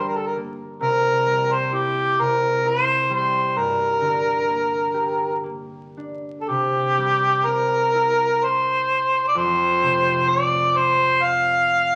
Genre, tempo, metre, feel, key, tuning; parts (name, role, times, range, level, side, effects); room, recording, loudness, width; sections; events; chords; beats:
celtic folk, Celtic slow air; 58-67 BPM; 3/4; rubato; A4 = 440 Hz
warm harmonica; melody; 0.0-12.0 s; G4 to F5; -21 LUFS; equal
concert harp; accompaniment; 0.0-12.0 s; F2 to G4; -30 LUFS; equal
moderate large studio reverb, RT60 1.2 s; very old 78 rpm record, vinyl crackle; -20 LUFS; mono
0.0-6.5 A section; 6.5-12.0 B section
0.0 Gm; 0.8 C; 3.6 Gm; 6.5 C; 9.3 F
| 0.82 1.74 2.65 | 3.56 4.48 5.46 | 6.48 7.47 8.42 | 9.34 10.28 11.20